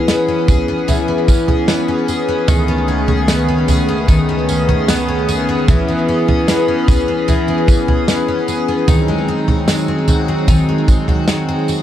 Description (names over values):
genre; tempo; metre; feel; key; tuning
dream pop; 75 BPM; 4/4; straight; C# minor; A4 = 442 Hz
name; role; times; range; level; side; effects
hollow soft pad; sustained chords; 0.0-11.8 s; C#2 to G#4; -18 LUFS; right 1 dB; chorus
picked twelve-string acoustic guitar; arpeggios; 0.0-11.8 s; D#3 to G#4; -17 LUFS; left 2 dB; lush chorus, digital delay
loose indie drum kit; drums; 0.1-11.8 s; kick drum, snare drum, tambourine, toms; -15 LUFS; right 1 dB; none
room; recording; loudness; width
light reverb, small room ambience; dark, warm production; -12 LUFS; side -11 dB against mid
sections
0.0-11.8 A section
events
none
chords
0.0 C#m7; 2.5 Amaj9#11/C#; 5.7 C#m7; 8.9 G#7